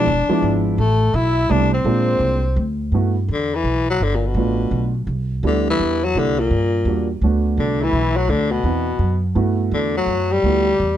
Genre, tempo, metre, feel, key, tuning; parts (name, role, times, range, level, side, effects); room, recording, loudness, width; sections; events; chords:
jazz, small-group swing and bop; 168 BPM; 3/4; swing 63% on 8ths; G major; A4 = 438 Hz
growling tenor saxophone; melody; 0.0-11.0 s; Bb2 to E4; -20 LUFS; left 3 dB; plate reverb
breathy trumpet; second line; 0.0-2.8, 7.6-11.0 s; B3 to E5; -28 LUFS; right 4 dB
warm baby grand piano; accompaniment; 0.0-10.7 s; F3 to F#4; -22 LUFS; right 4 dB
upright bass; bass; 0.0-11.0 s; E1 to G2; -20 LUFS; equal
light reverb; dark, warm production; -16 LUFS; side -11 dB against mid
0.0-2.9 A section; 2.9-11.0 B section
0.0 E7b9; 0.8 Am9; 1.9 Bb9; 2.6 Csus2/D; 2.9 Gmaj13; 4.0 G7; 5.1 Cmaj9; 6.1 C9; 7.2 Bm7; 8.3 D13; 9.4 Gmaj13